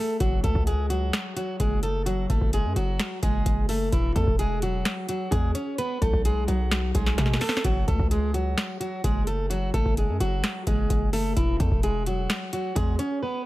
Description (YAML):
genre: hip hop, trap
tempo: 129 BPM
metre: 4/4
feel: half-time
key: F# minor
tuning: A4 = 445 Hz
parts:
  - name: fingerpicked plugged-in steel-string acoustic guitar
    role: melody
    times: 0.0-13.4 s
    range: E3 to C#5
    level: -28 LUFS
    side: equal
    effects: low-pass filter, tape echo
  - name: hard-hitting 808-style bass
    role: bass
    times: 0.2-13.0 s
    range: E1 to B2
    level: -26 LUFS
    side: equal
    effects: none
  - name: booming analog drum machine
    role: drums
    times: 0.2-13.1 s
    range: finger snaps, hi-hat, kick drum, snare drum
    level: -25 LUFS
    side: equal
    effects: none
room: digital ambience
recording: none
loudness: -23 LUFS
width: side -17 dB against mid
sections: 0.0-13.5 A section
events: drum fill 7.2-7.6; break 13.2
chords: 0.2 F#madd9; 3.9 Eadd9; 5.8 B5; 7.6 F#madd9; 11.4 Eadd9